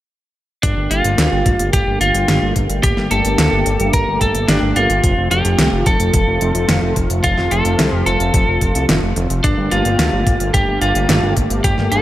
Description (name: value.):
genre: synthwave.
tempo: 109 BPM.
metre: 4/4.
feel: straight.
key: G minor.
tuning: A4 = 444 Hz.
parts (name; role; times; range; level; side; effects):
lightly driven lead guitar; melody; 0.6-12.0 s; D4 to Bb4; -18 LUFS; equal; digital delay.
warm analog pad; sustained chords; 0.6-12.0 s; C3 to G4; -22 LUFS; equal; chorus, sidechain pumping.
fat analog bass; bass; 0.6-12.0 s; F1 to D2; -19 LUFS; equal; tube saturation.
electronic kick drum; drums; 0.6-11.8 s; none; -19 LUFS; equal; none.
pop drum kit; drums; 0.6-12.0 s; hi-hat, snare drum; -20 LUFS; equal; gated reverb.
room: light reverb, digital ambience.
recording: none.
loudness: -13 LUFS.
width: side -14 dB against mid.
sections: 0.6-12.0 A section.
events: none.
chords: 0.6 Gmadd9; 5.0 F; 9.4 Gmadd9.